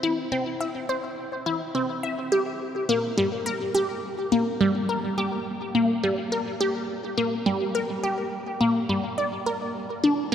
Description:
ambient; 105 BPM; 4/4; straight; G dorian; A4 = 439 Hz
resonant blip pluck; solo; 0.0-10.3 s; G3 to E5; -23 LUFS; equal; phaser, analog delay
wet cathedral reverb, RT60 6.3 s; in a vast, echoing space; -24 LUFS; side -9 dB against mid
0.0-10.3 A section

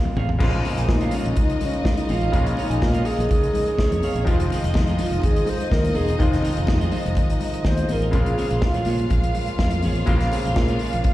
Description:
disco; 124 BPM; 4/4; straight; Bb minor; A4 = 440 Hz
bright concert grand piano; accompaniment; 0.0-11.1 s; Db3 to F4; -30 LUFS; left 2 dB; plate reverb, slapback echo
mellow French horn section; sustained chords; 0.0-11.1 s; Db3 to F4; -31 LUFS; right 1 dB; stereo widening, plate reverb
clean electric guitar; accompaniment; 0.1-11.1 s; Eb4 to Ab5; -34 LUFS; right 8 dB; plate reverb, slapback echo
warm soul drum kit; drums; 0.1-11.1 s; crash cymbal, hi-hat, kick drum, snare drum, toms; -23 LUFS; equal
congas; percussion; 0.1-11.1 s; -33 LUFS; left 4 dB; slapback echo
fingered electric bass; bass; 0.2-11.1 s; E1 to Bb2; -23 LUFS; equal
clear studio string section; second line; 0.4-11.1 s; Db4 to F5; -31 LUFS; left 1 dB; plate reverb, slapback echo
reedy wooden-headed alto flute; melody; 0.7-9.1 s; Db4 to Eb5; -26 LUFS; equal; plate reverb, slapback echo
little or no reverb; live gig heard through the venue's PA, recital hall reverb; -19 LUFS; side -15 dB against mid
0.4-11.1 A section
drum fill 0.0-0.4; alto flute solo 0.4-11.1
0.4 Bbm7; 4.3 Fm7; 8.1 Bbm7

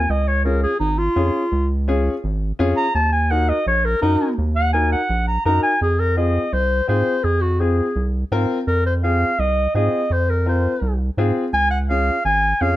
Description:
latin; 168 BPM; 4/4; straight; A4 = 436 Hz
warm clarinet; melody; 0.0-12.8 s; Eb4 to Bb5; -20 LUFS; equal
round analog bass; bass; 0.0-12.8 s; Ab1 to Ab2; -20 LUFS; right 1 dB
warm upright piano; accompaniment; 0.4-12.8 s; C4 to Bb4; -23 LUFS; left 3 dB
little or no reverb; close, detailed microphones; -17 LUFS; side -15 dB against mid
0.0-5.8 A section; 5.8-12.8 B section
clarinet solo 0.0-5.8
0.1 Db; 3.0 Ebm; 5.8 Fm; 11.5 Db

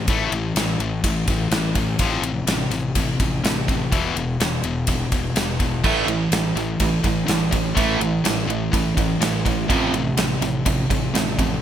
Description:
hard rock; 125 BPM; 4/4; straight; A minor; A4 = 439 Hz
high-gain distorted guitar; riff; 0.0-11.6 s; E2 to A3; -23 LUFS; left 4 dB; distortion
fuzz fingered electric bass; bass; 0.0-11.6 s; E1 to A1; -26 LUFS; equal; overdrive
gated 80s drum kit; drums; 0.1-11.5 s; crash cymbal, kick drum, ride cymbal, snare drum; -23 LUFS; right 1 dB
overdriven semi-hollow guitar; riff; 5.8-11.6 s; F2 to A3; -24 LUFS; right 13 dB
little or no reverb; -19 LUFS; side -10 dB against mid
0.0-11.6 A section
0.0 A5; 2.0 F/A; 3.9 E5; 5.8 A5; 9.7 F/A

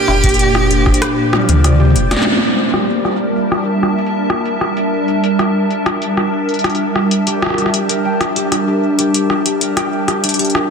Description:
IDM; 96 BPM; 4/4; straight; G dorian; A4 = 440 Hz
rich cello; melody; 0.0-1.6 s; G4; -20 LUFS; right 2 dB; ping-pong delay
hollow soft pad; sustained chords; 0.0-10.7 s; Bb2 to A5; -17 LUFS; equal; ensemble chorus, vintage 12-bit sampler grit
concert harp; arpeggios; 0.0-10.7 s; D4 to G5; -20 LUFS; left 1 dB; ping-pong delay
warm sub bass; bass; 0.1-2.2 s; F1 to D2; -14 LUFS; equal; tube saturation
electro analog drum machine; drums; 0.1-10.7 s; hi-hat, rim click, snare drum, toms; -17 LUFS; left 1 dB; low-pass filter on hats, soft clipping on snare, low-pass filter on snare, low-pass filter on toms, low-pass filter on room
electronic kick drum; drums; 0.2-1.0 s; -16 LUFS; equal
wet echo chamber reverb, RT60 2.1 s; dense, heavily limited modern master; -12 LUFS; side -6 dB against mid
0.0-2.3 A section; 2.3-10.7 B section
kick drops out 1.0-2.3; drum fill 1.3-2.3; band accent 2.1-2.4; filter sweep on drum 2.3-10.7
0.0 Bb6; 2.3 Gm69

